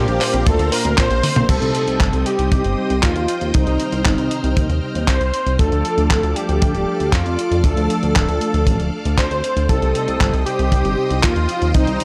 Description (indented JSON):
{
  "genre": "italo disco",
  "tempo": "117 BPM",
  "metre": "4/4",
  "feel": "straight",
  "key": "C dorian",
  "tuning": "A4 = 440 Hz",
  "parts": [
    { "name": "unison lead", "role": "melody", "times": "0.0-12.0 s", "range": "Eb4 to C5", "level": "-24 LUFS", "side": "equal", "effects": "tape echo" },
    { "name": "string machine, full ensemble", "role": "sustained chords", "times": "0.0-12.0 s", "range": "A4 to F6", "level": "-31 LUFS", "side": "equal", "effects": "ensemble chorus" },
    { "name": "analog pluck", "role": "arpeggios", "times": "0.0-1.5 s", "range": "Bb3 to C5", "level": "-31 LUFS", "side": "equal", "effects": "none" },
    { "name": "mellow synth brass", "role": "stabs", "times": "0.0-12.0 s", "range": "Bb2 to C5", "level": "-26 LUFS", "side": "equal", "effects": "chorus, phaser" },
    { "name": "chorused synth bass", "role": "bass", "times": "0.0-12.0 s", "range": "D1 to F2", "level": "-23 LUFS", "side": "equal", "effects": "none" },
    { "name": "dusty soul sampler-style drum kit", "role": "drums", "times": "0.1-12.0 s", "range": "crash cymbal, handclaps, hi-hat, toms", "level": "-26 LUFS", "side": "equal", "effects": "none" },
    { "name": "kick drum", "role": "drums", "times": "0.5-11.8 s", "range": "none", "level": "-20 LUFS", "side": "equal", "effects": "none" }
  ],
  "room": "digital ambience",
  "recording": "dry, gritty hardware recording",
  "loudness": "-18 LUFS",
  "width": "mono",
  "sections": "0.0-1.5 A section; 1.5-12.0 B section",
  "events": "drum fill 1.2",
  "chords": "0.0 Bbadd9; 1.5 Cm; 5.6 Dm; 9.7 Cm",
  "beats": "0.46 0.98 | 1.49 2.00 2.52 3.03 | 3.54 4.05 4.57 5.08 | 5.59 6.11 6.62 7.13 | 7.64 8.16 8.67 9.18 | 9.70 10.21 10.72 11.23 | 11.75"
}